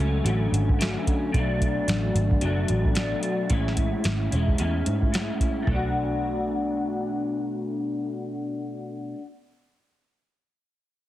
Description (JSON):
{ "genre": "indie pop, bedroom pop", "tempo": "111 BPM", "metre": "4/4", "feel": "swing 60% on 16ths", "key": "B dorian", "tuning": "A4 = 440 Hz", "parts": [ { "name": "electric guitar through a small old amp", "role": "accompaniment", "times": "0.0-9.2 s", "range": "A2 to F#4", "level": "-26 LUFS", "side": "left 1 dB", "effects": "analog chorus, vibrato effect" }, { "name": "vintage muted picked electric bass", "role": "bass", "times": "0.0-8.9 s", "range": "E1 to G#2", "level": "-26 LUFS", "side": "right 1 dB", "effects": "none" }, { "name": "soft vintage rhythm box", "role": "drums", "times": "0.3-5.8 s", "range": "hi-hat, kick drum, snare drum, toms", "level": "-26 LUFS", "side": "equal", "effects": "overdrive" } ], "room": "light reverb, digital ambience", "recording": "heavily compressed radio sound, multiband compression", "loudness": "-23 LUFS", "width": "side -14 dB against mid", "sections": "0.0-5.7 A section; 5.7-10.0 B section", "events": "none", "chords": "0.0 Dmaj7; 1.3 Bm7; 3.5 Amaj7; 5.7 Bm7" }